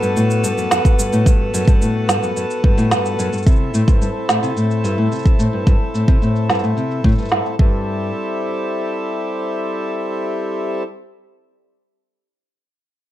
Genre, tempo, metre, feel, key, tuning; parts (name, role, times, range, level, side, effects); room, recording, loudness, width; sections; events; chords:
folktronica; 109 BPM; 4/4; straight; A dorian; A4 = 440 Hz
pedal harmonium; sustained chords; 0.0-10.8 s; G3 to A4; -22 LUFS; left 1 dB; plate reverb
nylon-string guitar; arpeggios; 0.0-8.1 s; F#2 to C3; -19 LUFS; left 1 dB; low-pass filter, ping-pong delay, plate reverb
electronic shaker and snare drum; drums; 0.0-7.6 s; -20 LUFS; right 3 dB; low-pass filter on perc, low-pass filter on hats, low-pass filter on snare, low-pass filter on room
electronic kick drum; drums; 0.8-7.7 s; -13 LUFS; equal
moderate studio reverb, RT60 0.7 s; dark, warm production; -15 LUFS; side -13 dB against mid
0.0-7.9 A section; 7.9-10.1 B section
filter sweep on drum 0.0-7.9
0.0 Gmaj9; 3.5 Am7